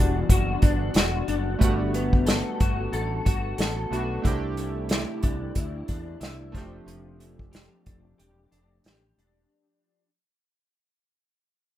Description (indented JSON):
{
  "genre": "indie pop, bedroom pop",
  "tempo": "91 BPM",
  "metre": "4/4",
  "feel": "swing 55% on 16ths",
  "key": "unclear",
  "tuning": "A4 = 441 Hz",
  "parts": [
    { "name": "chorused retro synth keys", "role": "accompaniment", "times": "0.0-9.5 s", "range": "G3 to G4", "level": "-32 LUFS", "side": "right 4 dB", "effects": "none" },
    { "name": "electric guitar through a small old amp", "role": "accompaniment", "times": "0.0-10.1 s", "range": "C3 to A4", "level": "-30 LUFS", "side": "left 4 dB", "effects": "ensemble chorus, vibrato effect" },
    { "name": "fretless electric bass", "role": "bass", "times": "0.0-9.4 s", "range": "E1 to E2", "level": "-30 LUFS", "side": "equal", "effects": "none" },
    { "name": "unplugged drum kit", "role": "drums", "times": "0.3-9.4 s", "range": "hi-hat, kick drum, snare drum", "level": "-23 LUFS", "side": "equal", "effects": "none" }
  ],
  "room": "light reverb",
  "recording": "rough home demo mix",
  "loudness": "-22 LUFS",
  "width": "side -13 dB against mid",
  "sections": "0.0-9.5 A section",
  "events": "fade-out 0.0-9.5",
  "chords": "0.0 Em9; 1.6 Gmaj9; 4.2 C69; 6.5 F69"
}